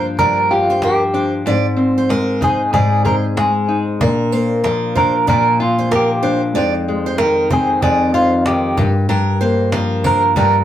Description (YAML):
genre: acoustic pop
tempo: 94 BPM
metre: 4/4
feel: swing 60% on 16ths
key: Bb mixolydian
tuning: A4 = 440 Hz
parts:
  - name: dark upright piano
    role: accompaniment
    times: 0.0-10.6 s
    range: G3 to D5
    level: -27 LUFS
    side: left 2 dB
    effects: none
  - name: nylon-string guitar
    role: accompaniment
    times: 0.0-10.6 s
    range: F2 to Ab4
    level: -17 LUFS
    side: left 2 dB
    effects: none
  - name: picked steel-string acoustic guitar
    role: arpeggios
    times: 0.0-10.5 s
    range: Bb4 to D5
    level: -21 LUFS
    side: right 3 dB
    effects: none
  - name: cajon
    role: drums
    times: 0.1-10.5 s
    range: none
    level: -23 LUFS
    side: right 1 dB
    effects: none
  - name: clean electric guitar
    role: melody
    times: 0.2-10.6 s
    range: F4 to Bb4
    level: -16 LUFS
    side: right 1 dB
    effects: tremolo
room: wet studio ambience, RT60 0.5 s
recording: rough rehearsal-room recording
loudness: -13 LUFS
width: side -11 dB against mid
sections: 0.0-10.6 A section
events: none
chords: 0.0 Gm7; 1.5 Ab; 4.0 Bb; 6.5 Fm7; 8.8 Gm7